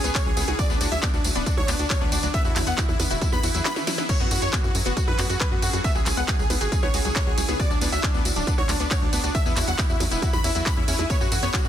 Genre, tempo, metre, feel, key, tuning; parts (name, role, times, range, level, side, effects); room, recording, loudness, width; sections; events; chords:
uplifting trance; 137 BPM; 4/4; straight; F# minor; A4 = 441 Hz
supersaw chords; melody; 0.0-11.7 s; D4 to B5; -29 LUFS; equal; sidechain pumping, ping-pong delay
bright baby grand piano; second line; 0.0-11.7 s; D4 to B5; -33 LUFS; right 2 dB; sidechain pumping, ping-pong delay
shimmering ambient pad; sustained chords; 0.0-11.7 s; C#3 to B4; -34 LUFS; equal; chorus, built-in reverb, sidechain pumping
analog pluck; arpeggios; 0.0-11.7 s; F#3 to F#4; -33 LUFS; left 6 dB; chorus, sidechain pumping, ping-pong delay
tight sequencer bass; bass; 0.0-11.7 s; D1 to F#2; -28 LUFS; equal; sidechain pumping
techno drum kit; drums; 0.0-11.7 s; crash cymbal, handclaps, hi-hat, percussion blips, ride cymbal, snare drum, tambourine; -27 LUFS; equal; soft clipping on snare
electronic kick drum; drums; 0.1-11.6 s; -24 LUFS; equal
little or no reverb; dense, heavily limited modern master; -20 LUFS; side -10 dB against mid
0.0-11.7 A section
drum fill 3.7-4.1
0.0 C#m; 0.6 G#dim/D; 2.3 E; 4.1 F#madd9; 5.8 C#m; 7.6 G#dim/D; 9.3 E; 11.1 F#madd9